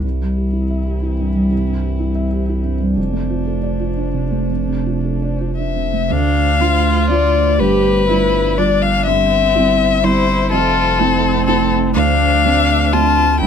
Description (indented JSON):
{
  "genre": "neoclassical piano and strings",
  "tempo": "122 BPM",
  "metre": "3/4",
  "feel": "rubato",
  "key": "C major",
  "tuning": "A4 = 437 Hz",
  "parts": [
    { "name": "muted violin", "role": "melody", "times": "0.0-13.5 s", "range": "D4 to A5", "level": "-18 LUFS", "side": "left 7 dB", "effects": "none" },
    { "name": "felt-muted upright piano", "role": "accompaniment", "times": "0.0-13.5 s", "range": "C2 to E5", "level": "-19 LUFS", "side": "right 4 dB", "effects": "none" },
    { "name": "warbly tape-like pad", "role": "sustained chords", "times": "0.0-13.5 s", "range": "E3 to E5", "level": "-27 LUFS", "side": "equal", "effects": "chorus, built-in reverb" },
    { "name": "saturated sub bass", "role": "bass", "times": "0.0-13.5 s", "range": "F1 to D2", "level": "-20 LUFS", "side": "equal", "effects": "none" },
    { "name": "muted viola", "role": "accompaniment", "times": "6.1-13.5 s", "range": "C4 to G4", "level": "-21 LUFS", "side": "right 2 dB", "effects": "none" }
  ],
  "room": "light reverb",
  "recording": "dark, warm production",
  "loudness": "-14 LUFS",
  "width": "side -7 dB against mid",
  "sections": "0.0-6.1 A section; 6.1-13.5 B section",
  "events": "none",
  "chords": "0.0 C; 3.0 F6; 6.1 Dm7; 7.6 G7; 9.1 C/G; 10.5 Fmaj7; 12.0 Dm7"
}